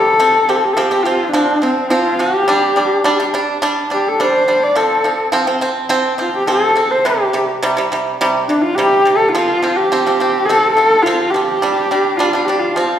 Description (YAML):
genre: mongolian traditional, Mongolian folk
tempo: 105 BPM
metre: 4/4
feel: straight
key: F gong mode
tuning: A4 = 440 Hz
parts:
  - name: rich horsehead fiddle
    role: melody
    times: 0.0-13.0 s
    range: C4 to D5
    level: -14 LUFS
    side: left 1 dB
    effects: none
  - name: pipa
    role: arpeggios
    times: 0.0-13.0 s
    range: C3 to D4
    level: -17 LUFS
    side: right 2 dB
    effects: none
room: wet recital hall reverb, RT60 1.4 s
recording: heard from further back in the room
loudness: -12 LUFS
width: side -10 dB against mid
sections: 0.0-13.0 A section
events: none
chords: 0.2 F5; 2.5 G5; 4.8 F5; 7.1 C5; 9.3 F5; 11.6 G5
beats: | 0.19 0.76 1.33 1.91 | 2.48 3.05 3.62 4.19 | 4.77 5.34 5.91 6.48 | 7.05 7.63 8.20 8.77 | 9.34 9.91 10.48 11.05 | 11.62 12.19 12.76